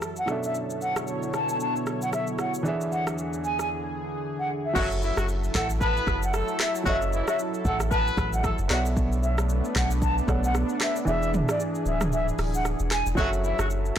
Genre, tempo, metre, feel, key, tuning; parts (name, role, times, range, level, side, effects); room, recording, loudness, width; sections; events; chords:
afrobeats; 114 BPM; 4/4; swing 58% on 16ths; F# minor; A4 = 440 Hz
warm baby grand piano; accompaniment; 0.0-14.0 s; B2 to F#5; -32 LUFS; right 2 dB
lush unison pad; sustained chords; 0.0-14.0 s; E2 to C#5; -32 LUFS; equal; chorus
deep house drum kit; drums; 0.0-14.0 s; crash cymbal, handclaps, hi-hat, kick drum, rim click, shaker, toms; -30 LUFS; equal; soft clipping on snare
mellow silver concert flute; melody; 0.2-13.6 s; D5 to A5; -30 LUFS; left 1 dB; tape echo
warm horn section; second line; 4.8-8.8, 13.2-13.7 s; E3 to B4; -30 LUFS; left 2 dB
punchy sub bass; bass; 4.8-13.9 s; D1 to B1; -27 LUFS; equal
little or no reverb; blown-out, overdriven recording, overdrive; -24 LUFS; side -10 dB against mid
0.0-4.8 A section; 4.8-14.0 B section
break 3.7-4.8; kick muted 11.1-13.2
0.3 Bm11; 2.7 E7; 4.8 F#m7; 8.7 Bm11; 11.1 E7; 13.2 F#m7